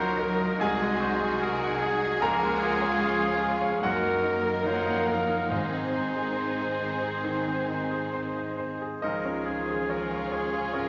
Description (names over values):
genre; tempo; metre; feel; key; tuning
classical, romantic movement for piano and orchestra; 67-76 BPM; 4/4; rubato; Db major; A4 = 440 Hz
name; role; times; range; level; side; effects
bright grand piano; melody; 0.0-10.9 s; C2 to Bb5; -32 LUFS; equal; none
warm symphonic violin section; melody; 0.0-10.9 s; Ab4 to Bb4; -38 LUFS; equal; none
clear oboe; second line; 0.0-10.9 s; Ab4 to C5; -35 LUFS; equal; none
mellow concert flute; second line; 0.0-10.9 s; Ab4 to Gb5; -40 LUFS; equal; none
rich chamber violin section; second line; 0.0-10.9 s; Eb4 to Bb4; -40 LUFS; equal; none
rich studio viola section; accompaniment; 0.0-10.9 s; Bb3 to Eb4; -42 LUFS; equal; none
dark French horn section; sustained chords; 0.0-10.9 s; Eb3 to C5; -37 LUFS; equal; none
rich symphonic cello section; bass; 0.0-10.9 s; Db3 to Bb3; -39 LUFS; equal; none
warm chamber double bass section; bass; 0.0-10.9 s; Gb1 to Db2; -43 LUFS; equal; none
timpani; percussion; 0.0-0.2, 5.5-6.8 s; Ab2; -40 LUFS; equal; none
room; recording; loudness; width
wet recital hall reverb, RT60 1.6 s; nothing above 7.5 kHz; -28 LUFS; mono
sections
0.0-10.9 A section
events
none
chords
0.0 Ebm7/Db; 0.6 Ab7/C; 2.2 Db; 3.8 Ebm/Gb; 5.5 Ab; 9.0 Db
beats
0.61 1.42 | 2.22 3.01 3.83 4.66 | 5.51 6.37 7.24 8.13 | 9.02 9.89 10.73